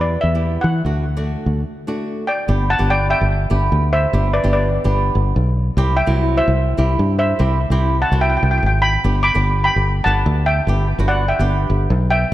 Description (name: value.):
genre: calypso.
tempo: 146 BPM.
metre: 4/4.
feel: straight.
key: G major.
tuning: A4 = 440 Hz.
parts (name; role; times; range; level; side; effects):
steel pan; melody; 0.0-12.3 s; B4 to D6; -19 LUFS; equal; digital delay.
flamenco guitar; accompaniment; 0.0-11.9 s; F#3 to G4; -24 LUFS; right 1 dB; none.
fingered electric bass; bass; 0.0-12.3 s; G1 to E3; -17 LUFS; equal; none.
room: moderate concert hall reverb, RT60 2.3 s.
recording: none.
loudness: -15 LUFS.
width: side -14 dB against mid.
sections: 0.0-2.5 A section; 2.5-12.3 B section.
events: break 1.7-2.5.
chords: 0.0 Em; 0.8 D; 2.5 G; 5.8 C; 9.0 G.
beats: 0.03 0.44 | 0.85 1.26 1.67 2.08 | 2.49 2.90 3.31 3.72 | 4.13 4.54 4.94 5.35 | 5.76 6.17 6.58 6.99 | 7.40 7.81 8.22 8.62 | 9.03 9.44 9.85 10.26 | 10.67 11.08 11.49 11.90 | 12.31.